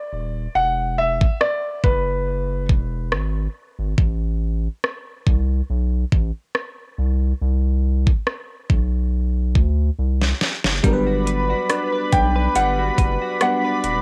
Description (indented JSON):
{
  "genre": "contemporary R&B",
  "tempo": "70 BPM",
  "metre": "4/4",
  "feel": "swing 54% on 16ths",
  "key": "G major",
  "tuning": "A4 = 442 Hz",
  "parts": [
    { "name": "warm baby grand piano", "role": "melody", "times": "0.0-2.7, 12.1-14.0 s", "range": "B4 to G5", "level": "-24 LUFS", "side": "equal", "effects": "cassette tape" },
    { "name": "round analog bass", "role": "bass", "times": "0.1-14.0 s", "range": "Eb1 to D2", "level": "-23 LUFS", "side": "equal", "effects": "none" },
    { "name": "smooth R&B drum kit", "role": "drums", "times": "1.2-14.0 s", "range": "hi-hat, kick drum, rim click, snare drum", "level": "-22 LUFS", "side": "equal", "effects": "cassette tape" },
    { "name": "FM electric piano", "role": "accompaniment", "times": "10.8-14.0 s", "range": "F#3 to B4", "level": "-27 LUFS", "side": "equal", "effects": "chorus, cassette tape" },
    { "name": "lush unison pad", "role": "sustained chords", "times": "10.8-14.0 s", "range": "B4 to B5", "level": "-27 LUFS", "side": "equal", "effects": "chorus, sidechain pumping, cassette tape" },
    { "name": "direct-recorded clean electric guitar", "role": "arpeggios", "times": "10.8-14.0 s", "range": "G3 to B4", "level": "-29 LUFS", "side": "equal", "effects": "analog chorus, cassette tape, analog delay" }
  ],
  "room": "digital ambience",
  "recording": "home recording on cassette",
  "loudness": "-21 LUFS",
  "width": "mono",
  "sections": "0.0-14.0 A section",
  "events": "break 0.0-10.8; drum fill 10.0-10.8",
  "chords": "0.0 N.C.; 0.6 E; 4.0 Amadd9; 7.0 N.C.; 10.8 Gmaj7"
}